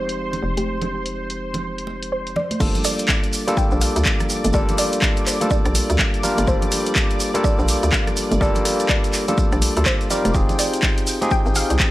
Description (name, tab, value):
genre	deep house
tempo	124 BPM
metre	4/4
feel	swing 61% on 16ths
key	G minor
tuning	A4 = 440 Hz
part	soft round pluck	melody	0.0-11.9 s	G4 to G5	-28 LUFS	equal	analog chorus, analog delay
part	barky tine electric piano	stabs	0.0-11.9 s	F3 to Bb4	-23 LUFS	left 1 dB	overdrive, sidechain pumping, analog delay
part	hollow knocking FM bass	bass	0.0-11.8 s	F1 to D2	-23 LUFS	equal	sidechain pumping
part	analog string pad	texture	0.0-11.9 s	C5 to G6	-32 LUFS	right 1 dB	ensemble chorus, sidechain pumping
part	punchy analog drum machine	drums	0.1-11.9 s	crash cymbal, handclaps, hi-hat, rim click	-23 LUFS	equal	low-pass filter on hats, low-pass filter on cymbals, low-pass filter on snare
part	congas	percussion	0.3-11.3 s	none	-29 LUFS	right 2 dB	none
part	electronic kick drum	drums	2.6-11.9 s	none	-21 LUFS	equal	none
part	shekere	percussion	2.6-11.9 s	none	-31 LUFS	right 4 dB	none
room	light reverb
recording	none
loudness	-17 LUFS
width	side -16 dB against mid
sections	0.0-2.6 A section; 2.6-11.9 B section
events	filter sweep on tine electric piano 0.0-2.6; drop 2.6-11.9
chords	0.0 Fm9; 2.6 Gm9; 10.1 Fm9